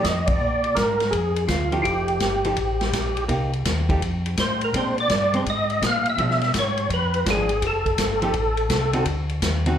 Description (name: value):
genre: soul jazz organ trio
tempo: 166 BPM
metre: 4/4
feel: swing 66% on 8ths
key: F mixolydian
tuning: A4 = 441 Hz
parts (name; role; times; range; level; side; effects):
- percussive tonewheel organ; melody; 0.0-9.0 s; F4 to F5; -23 LUFS; equal; slow rotary speaker, chorus vibrato, plate reverb, slapback echo
- archtop guitar, miked and amplified; accompaniment; 0.0-9.8 s; D3 to G4; -27 LUFS; right 2 dB; plate reverb, slapback echo
- mellow tonewheel organ; bass; 0.0-9.8 s; F1 to B2; -26 LUFS; equal; chorus vibrato, slow rotary speaker
- swinging big-band drum kit; drums; 0.0-9.7 s; hi-hat, kick drum, ride cymbal, snare drum; -26 LUFS; left 1 dB; none
room: moderate club ambience, RT60 0.5 s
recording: live gig heard through the venue's PA, club reverb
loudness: -20 LUFS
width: side -9 dB against mid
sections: 0.0-9.8 A section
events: band accent 0.2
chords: 0.4 Bb7; 1.8 F9; 3.3 Cm7; 4.0 F; 4.7 Bb9; 6.2 Bdim7; 7.6 F9; 9.1 D7b9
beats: 0.04 | 0.40 0.76 1.12 1.48 | 1.84 2.21 2.57 2.93 | 3.29 3.65 4.01 4.37 | 4.73 5.09 5.45 5.81 | 6.17 6.53 6.89 7.25 | 7.62 7.98 8.34 8.70 | 9.06 9.42